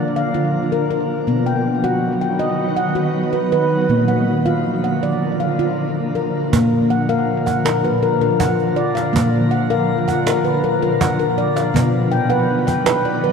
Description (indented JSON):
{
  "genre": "world meditative, meditative tuned percussion",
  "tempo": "160 BPM (eighths)",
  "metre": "7/8",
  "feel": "straight",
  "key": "unclear",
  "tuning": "A4 = 439 Hz",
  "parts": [
    { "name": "shimmering ambient pad", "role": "sustained chords", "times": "0.0-13.3 s", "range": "Bb2 to B3", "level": "-20 LUFS", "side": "equal", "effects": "chorus, built-in reverb, shimmer reverb" },
    { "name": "handpan", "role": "arpeggios", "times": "0.0-13.3 s", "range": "Bb2 to G5", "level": "-18 LUFS", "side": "left 1 dB", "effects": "tape echo, shimmer reverb" },
    { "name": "cajon", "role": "percussion", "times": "6.5-13.1 s", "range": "none", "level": "-24 LUFS", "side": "right 4 dB", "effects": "none" }
  ],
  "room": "wet cathedral reverb, RT60 5.4 s",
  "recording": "none",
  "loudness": "-15 LUFS",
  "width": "side -6 dB against mid",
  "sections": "0.0-6.5 A section; 6.5-13.3 B section",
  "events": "none",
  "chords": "0.0 Bb; 1.3 B; 3.9 Bb; 11.7 B",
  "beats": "0.15 0.53 0.90 | 1.28 1.65 2.03 2.40 2.78 3.15 3.53 | 3.90 4.28 4.65 5.03 5.40 5.78 6.15 | 6.53 6.90 7.28 7.65 8.02 8.40 8.77 | 9.14 9.51 9.89 10.26 10.63 11.00 11.37 | 11.75 12.12 12.49 12.86 13.23"
}